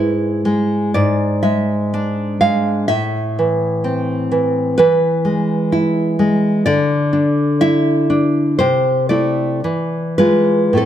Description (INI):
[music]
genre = romantic piece for solo classical guitar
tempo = 51-65 BPM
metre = 2/4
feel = rubato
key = unclear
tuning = A4 = 440 Hz
[part]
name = nylon-string guitar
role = solo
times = 0.0-10.9 s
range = G#2 to F5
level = -14 LUFS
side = equal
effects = none
[sound]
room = light reverb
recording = close, detailed microphones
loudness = -14 LUFS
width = side -10 dB against mid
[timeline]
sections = 0.0-10.9 A section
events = none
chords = 0.0 E/G#; 0.9 E7/G#; 2.9 Am; 4.8 E; 6.7 Dsus2; 8.6 Am/C; 9.6 E7b9